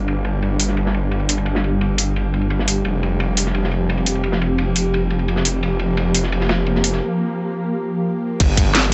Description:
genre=dark technical drum and bass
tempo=173 BPM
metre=4/4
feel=straight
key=unclear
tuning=A4 = 440 Hz
part: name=swarming drone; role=sustained chords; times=0.0-8.9 s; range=F3 to G4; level=-24 LUFS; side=equal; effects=built-in reverb, sidechain pumping
part: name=snarling distorted saw bass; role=bass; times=0.0-8.9 s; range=F1 to G1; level=-23 LUFS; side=equal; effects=distortion, overdrive
part: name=crunchy breakbeat drum kit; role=drums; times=0.1-8.8 s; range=ride cymbal, snare drum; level=-29 LUFS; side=equal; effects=high-pass filter on cymbals, low-pass filter on cymbals, high-pass filter on snare, low-pass filter on snare, high-pass filter on room, low-pass filter on room
part: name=drum and bass drum kit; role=drums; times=0.6-8.8 s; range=crash cymbal, hi-hat, snare drum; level=-21 LUFS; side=equal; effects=none
part: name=electronic kick drum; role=drums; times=8.4-8.6 s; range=none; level=-19 LUFS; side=equal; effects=none
room=light reverb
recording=nothing above 8.0 kHz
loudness=-20 LUFS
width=mono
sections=0.0-8.4 A section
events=break 7.0-8.4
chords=0.0 G5; 2.9 F5; 8.4 G5

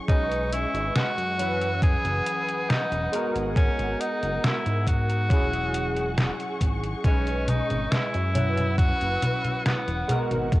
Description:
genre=vaporwave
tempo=69 BPM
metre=4/4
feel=straight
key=unclear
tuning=A4 = 440 Hz
part: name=barky tine electric piano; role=accompaniment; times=0.0-10.6 s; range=E3 to D#5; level=-30 LUFS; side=equal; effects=ensemble chorus, vintage 12-bit sampler grit, cassette tape
part: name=dark symphonic string section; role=sustained chords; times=0.0-10.6 s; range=G#4 to E6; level=-36 LUFS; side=left 1 dB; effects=vintage 12-bit sampler grit, cassette tape
part: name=bright tenor saxophone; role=melody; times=0.1-10.3 s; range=B3 to G#4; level=-28 LUFS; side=equal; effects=cassette tape, tape echo
part: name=chorused synth bass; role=bass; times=0.1-10.6 s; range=E1 to G#2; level=-29 LUFS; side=equal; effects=none
part: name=detuned 8-bit digital drum machine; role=drums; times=0.1-10.6 s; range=congas, hi-hat, snare drum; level=-27 LUFS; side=equal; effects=cassette tape
part: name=electronic kick drum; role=drums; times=0.1-10.6 s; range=none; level=-22 LUFS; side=equal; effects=cassette tape
room=little or no reverb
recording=home recording on cassette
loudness=-22 LUFS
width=side -18 dB against mid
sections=0.0-10.6 A section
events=none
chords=0.1 B69; 1.4 F#7sus4; 3.1 G#m9; 5.3 E69; 7.0 B69; 8.4 F#7sus4; 10.1 G#m9

